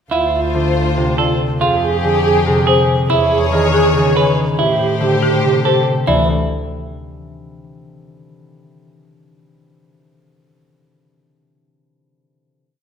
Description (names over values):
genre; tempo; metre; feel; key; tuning
classical, minimalist pattern music; 282 BPM (eighths); 7/8; straight; unclear; A4 = 440 Hz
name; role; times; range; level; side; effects
folk marimba with medium hard mallets; melody; 0.1-6.3 s; G4 to F5; -22 LUFS; left 6 dB; none
alto flute; second line; 0.1-5.8 s; F4 to Ab4; -19 LUFS; right 4 dB; none
clear symphonic string section; sustained chords; 0.1-5.8 s; F4 to C#5; -21 LUFS; left 4 dB; none
semi-hollow electric guitar; arpeggios; 0.1-6.3 s; E4 to B4; -20 LUFS; right 4 dB; none
clear double bass; bass; 0.1-6.3 s; D2 to A2; -21 LUFS; right 1 dB; none
Celtic harp; accompaniment; 0.5-6.3 s; C3 to E3; -20 LUFS; left 1 dB; none
room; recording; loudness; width
wet recital hall reverb, RT60 1.6 s; minimal, uncompressed stereo recording; -13 LUFS; side -7 dB against mid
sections
0.1-6.1 A section; 6.1-7.6 final chord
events
none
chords
0.1 Dm7; 1.6 Fmadd9; 3.1 E6; 4.6 Am7; 6.1 Dsus2